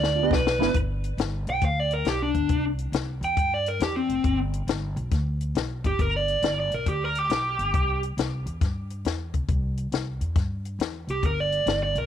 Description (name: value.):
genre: electric blues shuffle.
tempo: 137 BPM.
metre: 4/4.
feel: swing 66% on 8ths.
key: G mixolydian.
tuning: A4 = 440 Hz.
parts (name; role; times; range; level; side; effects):
dark smooth lead guitar; melody; 0.0-8.0, 11.1-12.1 s; C4 to G5; -26 LUFS; right 1 dB; overdrive.
upright bass; bass; 0.0-12.1 s; F1 to G2; -29 LUFS; equal; none.
compact cocktail drum kit; drums; 0.0-12.0 s; hi-hat, kick drum, snare drum; -27 LUFS; left 4 dB; none.
warm upright piano; accompaniment; 0.2-0.7 s; B3 to G4; -27 LUFS; right 14 dB; none.
room: little or no reverb.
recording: 1960s-style stereo.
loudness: -23 LUFS.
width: side -10 dB against mid.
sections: 0.7-12.1 A section.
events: drum fill 0.0-0.7.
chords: 0.0 G; 2.5 C; 4.2 G; 7.7 C; 11.2 G.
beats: 0.30 | 0.74 1.18 1.61 2.05 | 2.49 2.93 3.36 3.80 | 4.24 4.68 5.11 5.55 | 5.99 6.42 6.86 7.30 | 7.74 8.17 8.61 9.05 | 9.48 9.92 10.36 10.79 | 11.23 11.67.